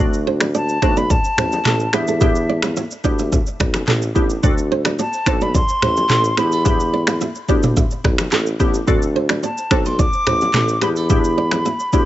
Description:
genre	afrobeats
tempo	108 BPM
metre	4/4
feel	straight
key	unclear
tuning	A4 = 442 Hz
part	glassy wavetable pluck	accompaniment	0.0-12.1 s	A3 to A4	-23 LUFS	left 2 dB	chorus
part	flamenco guitar	riff	0.0-12.0 s	A4 to E5	-24 LUFS	right 7 dB	tape echo
part	warm tuba	bass	0.0-12.1 s	A1 to E2	-21 LUFS	equal	none
part	afro-pop drum kit	drums	0.1-12.1 s	finger snaps, handclaps, kick drum, rim click, shaker, toms	-19 LUFS	equal	none
part	bongos and congas	percussion	0.4-11.8 s	none	-26 LUFS	left 2 dB	none
part	hollow concert flute	melody	0.6-12.1 s	E5 to D6	-21 LUFS	equal	tape echo
room	small room reverb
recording	nothing above 7.9 kHz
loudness	-15 LUFS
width	side -14 dB against mid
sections	0.0-12.1 A section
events	none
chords	0.0 D7; 1.9 Em7; 4.4 D7; 6.4 Em7; 8.9 D7; 10.8 Em7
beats	0.54 1.10 1.66 | 2.21 2.77 3.32 3.88 | 4.43 4.99 5.54 6.10 | 6.66 7.21 7.77 8.32 | 8.88 9.43 9.99 10.54 | 11.10 11.65

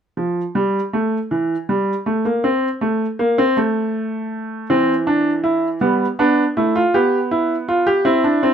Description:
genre	classical, baroque-style 4-part fugue for grand piano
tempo	53 BPM (dotted quarters)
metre	6/8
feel	straight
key	unclear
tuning	A4 = 441 Hz
part	warm baby grand piano	solo	0.2-8.5 s	E3 to G4	-16 LUFS	right 1 dB	none
room	light reverb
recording	close, detailed microphones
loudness	-16 LUFS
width	side -8 dB against mid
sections	0.2-8.5 A section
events	none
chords	0.2 N.C.; 4.7 C/E; 5.8 G; 6.9 G7/B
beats	| 0.17 1.31 | 2.44 3.57 | 4.69 5.82 | 6.94 8.06

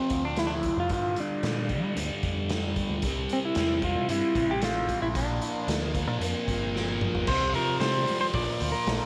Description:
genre	psychedelic rock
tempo	113 BPM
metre	4/4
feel	straight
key	unclear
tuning	A4 = 445 Hz
part	clean lap steel guitar	melody	0.0-9.1 s	C4 to D5	-32 LUFS	equal	tape echo
part	fuzz guitar	riff	0.0-9.1 s	F2 to F4	-33 LUFS	equal	distortion, phaser
part	deep dub picked electric bass	bass	0.1-9.0 s	G1 to G3	-35 LUFS	equal	none
part	raw garage drum kit	drums	0.1-9.0 s	crash cymbal, hi-hat, kick drum, snare drum, toms	-35 LUFS	equal	none
room	light reverb, small room ambience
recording	none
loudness	-28 LUFS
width	mono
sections	0.0-7.3 A section; 7.3-9.1 B section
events	drum fill 6.8-7.3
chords	0.0 F5; 0.9 Gm7; 3.0 C; 5.2 Bb; 7.3 Csus4; 8.3 Bb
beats	0.38 | 0.92 1.45 1.98 2.51 | 3.04 3.57 4.11 4.64 | 5.17 5.70 6.23 6.76 | 7.29 7.82 8.35 8.88

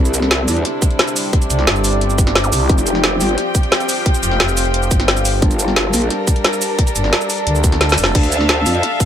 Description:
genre	dark technical drum and bass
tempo	176 BPM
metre	4/4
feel	straight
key	unclear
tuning	A4 = 441 Hz
part	warm chamber string section	sustained chords	0.0-9.1 s	C3 to G5	-22 LUFS	left 1 dB	sidechain pumping
part	growl bass	bass	0.0-0.6, 2.7-3.4, 5.4-6.1, 8.1-8.8 s	F1 to F2	-17 LUFS	equal	chorus, overdrive
part	deep dark ambient pad	texture	0.0-9.1 s	C4 to F5	-23 LUFS	equal	chorus, built-in reverb, sidechain pumping
part	drum and bass drum kit	drums	0.1-9.1 s	crash cymbal, hi-hat, shaker, snare drum	-17 LUFS	equal	none
part	electronic kick drum	drums	0.8-9.1 s	none	-15 LUFS	equal	none
part	growling FM bass	bass	1.5-8.1 s	F1 to D2	-18 LUFS	equal	none
part	zap	sound effects	2.4-2.5 s	none	-27 LUFS	equal	none
room	light reverb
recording	none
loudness	-13 LUFS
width	side -10 dB against mid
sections	0.0-9.1 A section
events	drum fill 7.8-8.2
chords	0.0 Cadd9; 2.7 Fsus2; 5.4 Gm; 8.2 Dm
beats	0.31 0.65 0.99 | 1.33 1.67 2.01 2.35 | 2.69 3.04 3.38 3.72 | 4.06 4.40 4.74 5.08 | 5.42 5.76 6.10 6.45 | 6.79 7.13 7.47 7.81 | 8.15 8.49 8.83

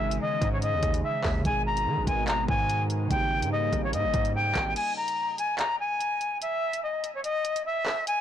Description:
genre	hip hop, drill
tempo	145 BPM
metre	4/4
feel	half-time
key	unclear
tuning	A4 = 440 Hz
part	jazz flute	melody	0.0-8.2 s	C#5 to A#5	-27 LUFS	left 2 dB	low-pass filter
part	muted felt-like synth keys	accompaniment	0.0-4.8 s	B2 to G#4	-36 LUFS	right 5 dB	chorus, low-pass filter
part	sweeping resonant pad	sustained chords	0.0-4.7 s	B2 to D#4	-36 LUFS	equal	chorus
part	distorted 808-style bass	bass	0.0-4.8 s	G#1 to D#3	-30 LUFS	equal	distortion
part	drill drum kit	drums	0.1-8.2 s	crash cymbal, handclaps, hi-hat, kick drum, rim click	-31 LUFS	equal	none
room	little or no reverb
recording	blown-out, overdriven recording, overdrive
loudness	-25 LUFS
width	side -10 dB against mid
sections	0.0-4.8 A section; 4.8-8.2 B section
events	break 4.8-8.2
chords	0.0 C#madd9/G#; 1.4 G#m; 3.1 D#7/G#; 4.8 N.C.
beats	0.21 0.62 1.04 | 1.45 1.86 2.28 2.69 | 3.10 3.52 3.93 4.35 | 4.76 5.17 5.59 6.00 | 6.42 6.83 7.24 7.66 | 8.07

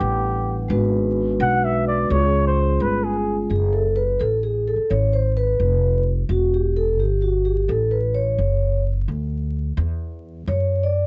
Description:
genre	hip hop, jazz-hop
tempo	86 BPM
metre	4/4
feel	swing 60% on 16ths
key	F# minor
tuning	A4 = 441 Hz
part	breathy flugelhorn	melody	0.0-3.4 s	G4 to F#5	-24 LUFS	equal	slapback echo
part	vibraphone with soft mallets	accompaniment	0.0-11.1 s	G3 to F#5	-24 LUFS	equal	none
part	upright bass	bass	0.0-11.1 s	E1 to F#2	-24 LUFS	equal	none
room	light reverb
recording	worn, warbling old tape, cassette tape, vinyl crackle, warbly pitch drift, nothing above 8.0 kHz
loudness	-21 LUFS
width	mono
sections	0.0-3.5 A section; 3.5-11.1 A section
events	flugelhorn solo 0.0-3.5; vibraphone solo 3.5-11.1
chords	0.0 Gmaj7; 0.7 G#m7b5; 2.1 C#; 3.5 F#madd9; 6.3 Em; 7.7 A; 9.1 D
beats	0.01 | 0.71 1.41 2.10 2.80 | 3.50 4.20 4.90 5.59 | 6.29 6.99 7.69 8.38 | 9.08 9.78 10.48

